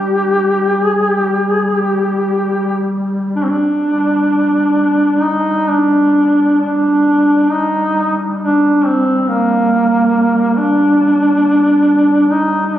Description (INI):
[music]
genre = caucasian folk, Caucasian lament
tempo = free time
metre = none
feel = none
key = G minor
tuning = A4 = 440 Hz
[part]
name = warm duduk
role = melody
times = 0.0-12.8 s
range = Bb3 to G4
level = -12 LUFS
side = equal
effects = none
[part]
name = mellow duduk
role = drone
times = 0.0-12.8 s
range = G3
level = -20 LUFS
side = left 1 dB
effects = none
[sound]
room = moderate church reverb, RT60 3.7 s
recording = recorded on a phone in the room, club reverb, compression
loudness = -11 LUFS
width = side -12 dB against mid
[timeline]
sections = 0.0-3.8 A section; 3.8-12.8 B section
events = none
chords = none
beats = free time